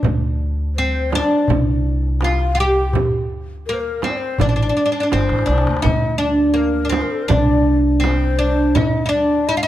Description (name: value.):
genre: Arabic maqam ensemble.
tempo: 83 BPM.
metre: 4/4.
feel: straight.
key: D maqam bayati.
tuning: A4 = 438 Hz.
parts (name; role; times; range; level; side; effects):
upright bass; bass; 0.0-9.7 s; G1 to D2; -20 LUFS; equal; none.
darbuka; percussion; 0.0-9.2 s; none; -24 LUFS; equal; none.
frame drum; percussion; 0.0-8.9 s; none; -25 LUFS; right 6 dB; none.
oud; melody; 0.8-9.7 s; Bb3 to G4; -18 LUFS; equal; none.
breathy mellow ney; second line; 0.8-9.7 s; A4 to G5; -25 LUFS; left 4 dB; none.
room: light reverb.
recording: close, detailed microphones.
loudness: -15 LUFS.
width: side -13 dB against mid.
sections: 0.0-9.7 A section.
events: drum fill 5.1-5.8.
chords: none.